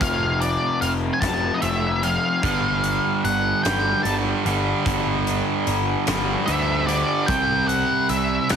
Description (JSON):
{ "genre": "quiet-loud alternative rock", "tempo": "49 BPM (dotted quarters)", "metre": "6/8", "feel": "straight", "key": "unclear", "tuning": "A4 = 441 Hz", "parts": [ { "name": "octave-fuzz lead guitar", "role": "melody", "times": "0.0-8.6 s", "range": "D5 to A5", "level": "-23 LUFS", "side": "left 1 dB", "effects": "distortion" }, { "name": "twelve-string electric guitar", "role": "arpeggios", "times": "0.0-2.4 s", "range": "F2 to F4", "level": "-30 LUFS", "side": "right 9 dB", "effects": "tremolo" }, { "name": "raw garage guitar", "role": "riff", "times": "0.0-8.6 s", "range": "F2 to C4", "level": "-26 LUFS", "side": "left 8 dB", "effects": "overdrive" }, { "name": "fuzz picked electric bass", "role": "bass", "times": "0.0-8.6 s", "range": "F1 to D2", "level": "-26 LUFS", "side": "equal", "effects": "overdrive" }, { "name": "big rock drum kit", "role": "drums", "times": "0.0-8.6 s", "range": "hi-hat, kick drum, snare drum", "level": "-29 LUFS", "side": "equal", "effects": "none" }, { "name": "cranked stack guitar", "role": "riff", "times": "2.4-8.6 s", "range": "G2 to C4", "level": "-24 LUFS", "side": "right 13 dB", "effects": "overdrive" } ], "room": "light reverb, small room ambience", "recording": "heavily compressed radio sound, multiband compression", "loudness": "-19 LUFS", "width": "side -7 dB against mid", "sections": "0.0-8.6 A section", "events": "lead electric guitar solo 0.0-8.6", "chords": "0.0 F; 2.4 G5; 7.3 C5" }